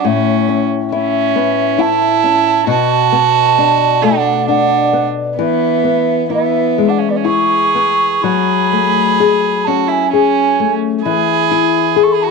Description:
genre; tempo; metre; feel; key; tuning
celtic folk, Celtic slow air; 61-70 BPM; 3/4; rubato; A major; A4 = 441 Hz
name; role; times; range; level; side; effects
baroque flute; melody; 0.0-12.3 s; D5 to C#6; -15 LUFS; right 4 dB; none
clear violin; second line; 0.0-12.3 s; B3 to A4; -17 LUFS; right 12 dB; none
nylon-string guitar; accompaniment; 0.0-12.3 s; A2 to G#4; -16 LUFS; left 11 dB; none
room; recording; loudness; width
wet spring reverb, RT60 1.3 s, small room ambience; 1960s-style stereo with parts hard left and right; -11 LUFS; side -4 dB against mid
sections
0.0-12.3 A section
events
none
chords
0.0 Aadd9; 2.7 Bm7; 5.4 E; 8.2 F#madd9; 11.0 E

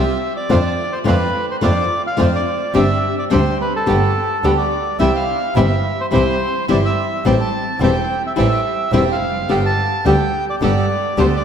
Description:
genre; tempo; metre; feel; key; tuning
tango; 107 BPM; 4/4; rubato; unclear; A4 = 439 Hz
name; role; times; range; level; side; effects
bandoneon; melody; 0.0-11.4 s; A4 to A5; -21 LUFS; right 1 dB; tape echo
flamenco guitar; accompaniment; 0.0-11.3 s; C3 to G4; -19 LUFS; left 3 dB; none
bandoneon; stabs; 0.0-11.4 s; A3 to A4; -25 LUFS; right 5 dB; tape echo
clear double bass; bass; 0.0-11.4 s; E1 to F2; -20 LUFS; right 2 dB; none
room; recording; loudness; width
wet lush hall reverb, RT60 2.8 s; dreamy mix soaked in reverb; -15 LUFS; side -8 dB against mid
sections
0.0-11.4 A section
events
none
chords
0.0 Fsus2; 0.5 Dm7/F; 2.7 Gsus4; 3.9 Gadd9; 5.0 C; 7.3 Am7; 9.5 Gadd9

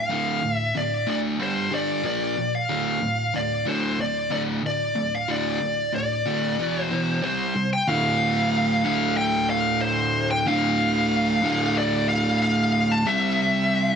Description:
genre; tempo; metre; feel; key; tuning
rock; 92 BPM; 4/4; straight; D minor; A4 = 443 Hz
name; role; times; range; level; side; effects
bluesy overdriven lead guitar; melody; 0.0-14.0 s; C5 to A5; -24 LUFS; left 1 dB; distortion
overdriven semi-hollow guitar; riff; 0.0-14.0 s; D2 to C4; -24 LUFS; right 1 dB; none
room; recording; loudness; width
light reverb, digital ambience; dense, heavily limited modern master; -21 LUFS; side -7 dB against mid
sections
0.0-7.9 A section; 7.9-14.0 B section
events
none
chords
0.0 Dm; 1.4 G5; 2.0 Bb5; 2.7 Dm; 6.6 E5; 7.2 C5; 7.9 Dm; 13.1 C

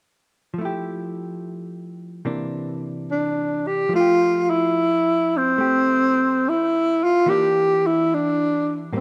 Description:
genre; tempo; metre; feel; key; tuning
jazz ballad; 72 BPM; 4/4; swing 68% on 8ths; F major; A4 = 440 Hz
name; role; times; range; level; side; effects
hollow-body jazz guitar; accompaniment; 0.5-9.0 s; A2 to G4; -31 LUFS; equal; none
breathy alto saxophone; melody; 3.1-9.0 s; C4 to G4; -20 LUFS; equal; none
room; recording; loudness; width
moderate lush hall reverb, RT60 2.6 s; rough home demo mix; -21 LUFS; mono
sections
0.6-3.9 A section; 3.9-9.0 B section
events
none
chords
0.6 Fmaj9; 2.2 C9; 3.9 Fmaj9; 7.3 Em7b5

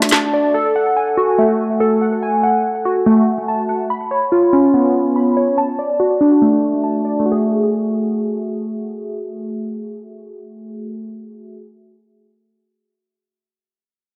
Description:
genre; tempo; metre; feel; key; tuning
hip hop; 143 BPM; 4/4; half-time; F# harmonic minor; A4 = 440 Hz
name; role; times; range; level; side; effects
glassy digital keys; arpeggios; 0.0-11.7 s; A3 to B5; -17 LUFS; equal; chorus, low-pass filter, digital delay
room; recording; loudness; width
moderate scoring stage reverb, RT60 2.0 s, digital ambience; dark, warm production; -16 LUFS; mono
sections
0.0-7.3 A section; 7.3-10.6 B section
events
filter sweep on synth keys 0.0-7.3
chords
0.0 D; 0.5 F#madd9; 3.9 C#7; 5.6 D; 7.3 F#madd9

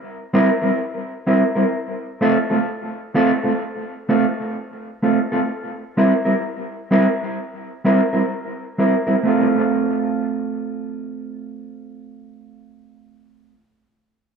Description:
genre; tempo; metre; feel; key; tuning
reggae; 64 BPM; 4/4; swing 61% on 16ths; unclear; A4 = 440 Hz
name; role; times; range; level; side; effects
mellow electric guitar; accompaniment; 0.3-13.6 s; G3 to Bb4; -18 LUFS; right 1 dB; tape echo
room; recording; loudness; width
wet spring reverb, RT60 1.7 s; echo-heavy mix; -17 LUFS; side -6 dB against mid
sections
0.0-9.3 A section; 9.3-13.0 B section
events
none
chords
0.0 C7; 1.7 Am; 5.5 C7; 9.3 F/A

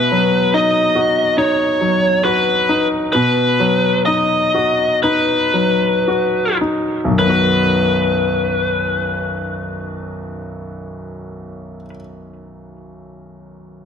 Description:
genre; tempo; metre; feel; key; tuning
pop; 52-73 BPM; 4/4; straight; B major; A4 = 439 Hz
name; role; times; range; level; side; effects
bluesy overdriven lead guitar; melody; 0.0-11.9 s; B4 to D#5; -16 LUFS; left 2 dB; distortion
clear grand piano; accompaniment; 0.0-13.9 s; B1 to F#4; -19 LUFS; equal; none
room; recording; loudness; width
moderate lush hall reverb, RT60 1.7 s, small room ambience; none; -14 LUFS; side -7 dB against mid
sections
0.0-7.2 A section; 7.2-11.8 B section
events
slowing down 0.0-7.2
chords
0.0 B

